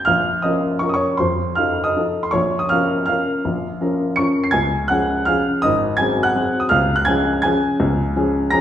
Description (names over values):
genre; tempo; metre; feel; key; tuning
classical, piano waltz; 153-175 BPM; 3/4; rubato; Bb minor; A4 = 440 Hz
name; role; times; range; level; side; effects
warm upright piano; solo; 0.0-8.6 s; Ab1 to Db7; -16 LUFS; equal; none
room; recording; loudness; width
wet recital hall reverb, RT60 1.3 s; heard from further back in the room, nothing above 10.9 kHz; -16 LUFS; side -10 dB against mid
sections
0.1-8.6 A section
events
none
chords
0.1 Bbm; 1.2 F7; 2.3 Bbm; 4.5 Db; 5.6 Ab7; 6.7 Db